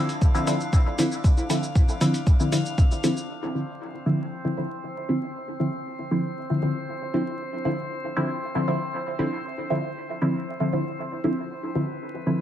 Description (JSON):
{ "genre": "dub techno", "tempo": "117 BPM", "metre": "4/4", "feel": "straight", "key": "D dorian", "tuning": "A4 = 441 Hz", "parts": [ { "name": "filtered dub chord stab", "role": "stabs", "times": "0.0-12.4 s", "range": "D3 to E4", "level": "-25 LUFS", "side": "equal", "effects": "chorus, phaser, sidechain pumping, dub echo" }, { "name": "drifting glass-harmonics texture", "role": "texture", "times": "0.0-12.4 s", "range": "C4 to F5", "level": "-35 LUFS", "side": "left 1 dB", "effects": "chorus, built-in reverb, sidechain pumping" }, { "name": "electronic hi-hat and cabasa", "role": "drums", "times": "0.1-3.3 s", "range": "none", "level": "-34 LUFS", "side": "equal", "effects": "low-pass filter on perc, studio reverb, low-pass filter on hats" }, { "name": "electronic kick drum", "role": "drums", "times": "0.2-2.9 s", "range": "none", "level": "-18 LUFS", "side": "equal", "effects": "studio reverb" } ], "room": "light reverb", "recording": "vinyl crackle", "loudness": "-23 LUFS", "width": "side -11 dB against mid", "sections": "0.0-3.3 A section; 3.3-12.4 B section", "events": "none", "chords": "0.0 Dm9" }